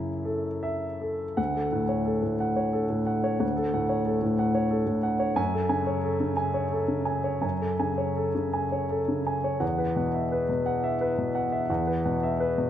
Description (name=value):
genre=neoclassical minimalist piano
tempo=78-94 BPM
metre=3/4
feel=rubato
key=unclear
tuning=A4 = 440 Hz
part: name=warm grand piano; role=solo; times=0.0-12.7 s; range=D2 to G#5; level=-24 LUFS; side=equal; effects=none
room=moderate scoring stage reverb, RT60 1.6 s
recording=none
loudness=-24 LUFS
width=side -10 dB against mid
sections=0.0-1.4 A section; 1.4-12.7 A section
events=none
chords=0.0 F#m7; 1.4 Dmaj7; 5.4 F#madd9; 9.6 Esus2